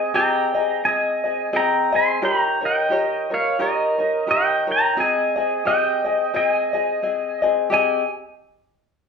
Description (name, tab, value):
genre	Hawaiian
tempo	87 BPM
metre	4/4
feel	swing 58% on 8ths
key	Ab major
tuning	A4 = 440 Hz
part	pedal steel guitar	melody	0.0-8.1 s	Bb4 to C6	-20 LUFS	right 2 dB	none
part	tenor ukulele	accompaniment	0.0-8.0 s	C4 to Eb5	-22 LUFS	left 4 dB	none
room	wet large studio reverb, RT60 0.8 s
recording	band playing live in one room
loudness	-18 LUFS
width	side -6 dB against mid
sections	0.0-2.2 A section; 2.2-7.7 B section; 7.7-9.1 C section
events	none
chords	0.0 Abmaj7; 2.2 Eb7; 5.0 Abmaj7